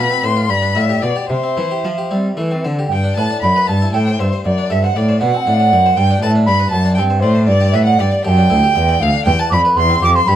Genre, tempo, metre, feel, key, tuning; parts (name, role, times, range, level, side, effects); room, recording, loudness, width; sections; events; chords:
classical, baroque-style sonata movement with continuo; 78 BPM (dotted quarters); 6/8; rubato; G major; A4 = 439 Hz
rich violin; melody; 0.0-10.4 s; C5 to D6; -20 LUFS; left 6 dB
mellow hollow wooden flute; second line; 0.0-10.4 s; B4 to D6; -17 LUFS; right 5 dB
harpsichord; accompaniment; 0.0-10.4 s; D2 to G5; -22 LUFS; left 2 dB
rich cello; bass; 0.0-10.4 s; D2 to G3; -16 LUFS; equal
light reverb; close, detailed microphones; -12 LUFS; side -11 dB against mid
0.0-2.9 A section; 2.9-10.4 A section
0.5 G7; 1.3 C; 2.9 G; 3.7 Am7/G; 4.5 D7/F#; 6.0 G; 6.7 D7/F#; 7.5 G5; 9.0 G7/D; 9.8 C/E